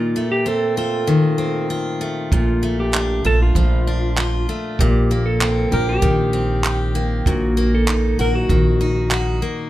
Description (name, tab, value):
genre	acoustic pop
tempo	97 BPM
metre	4/4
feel	straight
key	Bb major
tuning	A4 = 440 Hz
part	clean lap steel guitar	melody	0.0-9.4 s	F4 to Bb4	-22 LUFS	right 2 dB	none
part	picked steel-string acoustic guitar	accompaniment	0.0-9.7 s	Bb2 to G4	-21 LUFS	left 2 dB	none
part	upright bass	bass	2.3-9.4 s	Bb1	-19 LUFS	equal	none
part	compact cocktail drum kit	drums	2.3-9.3 s	handclaps, kick drum	-21 LUFS	right 2 dB	none
room	light reverb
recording	none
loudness	-16 LUFS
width	side -14 dB against mid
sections	0.0-9.7 A section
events	none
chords	0.0 F7/Bb; 2.3 Bbmaj7; 4.8 Cm7/Bb; 7.3 Ebm/Bb